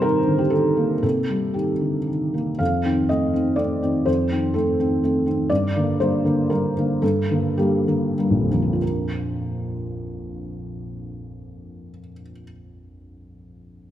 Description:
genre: neoclassical minimalist piano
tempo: 92-128 BPM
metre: 3/4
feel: rubato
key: Bb major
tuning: A4 = 440 Hz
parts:
  - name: felt-muted upright piano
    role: solo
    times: 0.0-13.9 s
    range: Bb1 to F5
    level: -20 LUFS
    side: equal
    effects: slapback echo
room: light reverb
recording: close, detailed microphones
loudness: -19 LUFS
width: side -12 dB against mid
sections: 0.0-2.6 A section; 2.6-8.8 B section; 8.8-12.7 C section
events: slowing down 4.8-8.8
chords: 0.0 Cm7; 2.6 F7; 5.5 Gm; 8.8 Bb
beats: 0.03 0.52 | 1.03 1.56 2.08 | 2.60 3.10 3.59 | 4.07 4.55 5.03 | 5.50 5.99 6.49 | 7.02 7.58 8.17 | 8.81 9.45 10.10 | 10.74 11.38 12.03

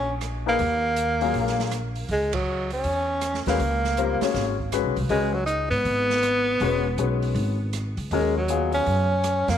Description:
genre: modal jazz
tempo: 160 BPM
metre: 4/4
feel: swing 65% on 8ths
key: unclear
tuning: A4 = 441 Hz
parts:
  - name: warm tenor saxophone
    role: melody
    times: 0.0-9.6 s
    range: Gb3 to Eb4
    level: -24 LUFS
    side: right 1 dB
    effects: tape echo
  - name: upright bass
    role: bass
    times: 0.0-9.6 s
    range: Fb1 to Ab2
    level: -27 LUFS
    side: equal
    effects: none
  - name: open jazz drum kit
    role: drums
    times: 0.2-9.5 s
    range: hi-hat, kick drum, ride cymbal, rim click, snare drum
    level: -35 LUFS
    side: right 8 dB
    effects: none
  - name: warm grand piano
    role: accompaniment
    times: 0.5-9.1 s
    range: Gb3 to Db5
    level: -27 LUFS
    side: left 11 dB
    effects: none
room: light reverb, small room ambience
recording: 1960s-style stereo with parts hard left and right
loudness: -22 LUFS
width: side -9 dB against mid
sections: 0.0-9.6 A section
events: band accent 2.3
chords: 0.0 Ebmadd9; 2.1 Dbm7; 8.1 Ebm9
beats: 0.22 | 0.59 0.97 1.34 1.72 | 2.09 2.47 2.85 3.22 | 3.60 3.97 4.35 4.72 | 5.10 5.48 5.85 6.23 | 6.61 6.98 7.36 7.73 | 8.11 8.49 8.86 9.24

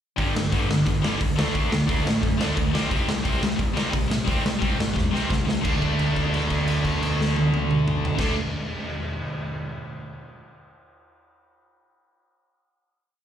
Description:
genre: punk rock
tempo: 176 BPM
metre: 4/4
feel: straight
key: unclear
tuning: A4 = 442 Hz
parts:
  - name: distorted electric guitar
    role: riff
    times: 0.2-8.3 s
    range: G2 to D4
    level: -28 LUFS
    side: right 9 dB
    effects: distortion
  - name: tight distorted guitar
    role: riff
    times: 0.2-8.3 s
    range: G2 to D4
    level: -28 LUFS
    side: left 10 dB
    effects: distortion, slapback echo
  - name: overdriven picked electric bass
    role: bass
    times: 0.2-8.3 s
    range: G1 to F#2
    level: -27 LUFS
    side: equal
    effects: none
  - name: raw garage drum kit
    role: drums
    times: 0.2-8.3 s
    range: crash cymbal, hi-hat, kick drum, snare drum, toms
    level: -25 LUFS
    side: equal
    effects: none
room: little or no reverb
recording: live gig heard through the venue's PA, club reverb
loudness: -21 LUFS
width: side -10 dB against mid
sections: 0.2-5.6 verse; 5.6-8.4 final chord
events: drum fill 5.0-5.6; held note 5.6-8.2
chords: 0.2 G5; 1.4 D5; 2.7 C5; 5.6 D5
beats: | 0.18 0.52 0.86 1.20 | 1.54 1.88 2.22 2.56 | 2.91 3.25 3.59 3.93 | 4.27 4.61 4.95 5.30 | 5.64 5.98 6.33 6.67 | 7.01 7.36 7.70 8.04

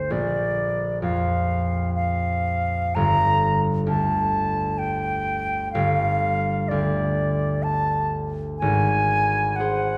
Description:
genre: classical, impressionist duo for flute and harp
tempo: 63 BPM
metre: 3/4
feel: uneven beats, rubato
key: unclear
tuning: A4 = 440 Hz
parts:
  - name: concert flute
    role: melody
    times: 0.0-10.0 s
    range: C5 to Bb5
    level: -26 LUFS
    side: equal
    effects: none
  - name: concert harp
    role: accompaniment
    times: 0.0-10.0 s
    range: G1 to C5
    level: -26 LUFS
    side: equal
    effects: none
room: wet recital hall reverb, RT60 1.4 s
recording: heard from further back in the room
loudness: -23 LUFS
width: mono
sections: 0.0-10.0 A section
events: none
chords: 0.1 Bb; 3.0 Gsus2; 8.6 Ab7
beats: | 0.11 1.02 1.95 | 2.96 3.87 4.80 | 5.75 6.70 7.65 | 8.61 9.59

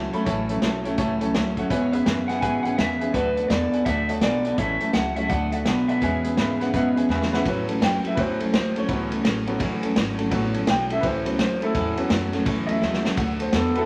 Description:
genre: rockabilly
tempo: 167 BPM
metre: 4/4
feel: swing 63% on 8ths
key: A major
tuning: A4 = 442 Hz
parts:
  - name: bright upright piano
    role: accompaniment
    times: 0.0-13.9 s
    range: F#3 to B5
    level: -31 LUFS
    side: equal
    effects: none
  - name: picked steel-string acoustic guitar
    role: accompaniment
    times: 0.0-13.9 s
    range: A2 to A4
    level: -31 LUFS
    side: equal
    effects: none
  - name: electric guitar through a small old amp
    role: riff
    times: 0.0-13.9 s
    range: E2 to B3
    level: -29 LUFS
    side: equal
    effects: none
  - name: upright bass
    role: bass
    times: 0.0-13.9 s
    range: F#1 to A2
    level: -35 LUFS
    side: equal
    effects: none
  - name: vintage drum kit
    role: drums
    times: 0.1-13.8 s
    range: hi-hat, kick drum, ride cymbal, snare drum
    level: -29 LUFS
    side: equal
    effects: none
  - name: electric guitar through a small old amp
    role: melody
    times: 1.7-7.1 s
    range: B4 to G#5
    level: -29 LUFS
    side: equal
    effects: none
room: moderate large studio reverb, RT60 1.3 s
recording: vinyl crackle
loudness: -23 LUFS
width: mono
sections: 0.0-7.5 A section; 7.5-13.9 B section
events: drum fill 7.1-7.5, 12.8-13.2; upright piano solo 7.5-13.9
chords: 0.0 A6; 1.7 E6; 3.1 D6; 4.6 A6; 5.3 D6; 6.0 E6; 7.5 A6; 13.2 D6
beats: | 0.27 0.62 0.98 1.34 | 1.70 2.06 2.42 2.78 | 3.14 3.50 3.86 4.22 | 4.58 4.94 5.30 5.66 | 6.02 6.38 6.73 7.09 | 7.45 7.81 8.17 8.53 | 8.89 9.24 9.60 9.96 | 10.32 10.67 11.03 11.39 | 11.75 12.10 12.46 12.82 | 13.17 13.53

